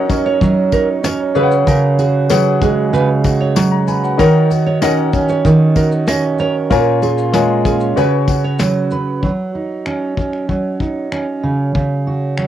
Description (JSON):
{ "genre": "acoustic pop", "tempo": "95 BPM", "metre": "4/4", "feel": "straight", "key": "F# major", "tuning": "A4 = 444 Hz", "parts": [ { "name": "clear concert grand piano", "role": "accompaniment", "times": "0.0-9.2 s", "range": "C#4 to C#6", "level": "-20 LUFS", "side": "left 10 dB", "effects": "cassette tape" }, { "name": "fingerpicked steel-string acoustic guitar", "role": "accompaniment", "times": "0.0-12.5 s", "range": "A#2 to B4", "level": "-14 LUFS", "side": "right 2 dB", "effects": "cassette tape" }, { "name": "soft brush drum kit", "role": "drums", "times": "0.1-12.5 s", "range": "finger snaps, kick drum, shaker, snare drum", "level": "-20 LUFS", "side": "left 2 dB", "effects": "cassette tape" }, { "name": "tambourine", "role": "percussion", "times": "0.1-8.7 s", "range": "none", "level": "-31 LUFS", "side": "left 12 dB", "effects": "none" }, { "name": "nylon-string guitar", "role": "arpeggios", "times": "0.3-8.6 s", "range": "G#4 to D#5", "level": "-20 LUFS", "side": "right 5 dB", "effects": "cassette tape" } ], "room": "moderate booth ambience, RT60 0.2 s", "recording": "home recording on cassette", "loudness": "-13 LUFS", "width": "side -11 dB against mid", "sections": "0.0-9.2 A section; 9.2-12.5 B section", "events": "none", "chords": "0.0 F#6; 1.4 C#7sus4; 4.2 D#m7; 6.7 A#m7; 8.0 C#7sus4; 9.2 F#5; 11.4 C#sus4", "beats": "0.41 1.04 | 1.67 2.30 2.93 3.56 | 4.19 4.82 5.45 6.08 | 6.71 7.34 7.97 8.60 | 9.23 9.86 10.49 11.12 | 11.75 12.38" }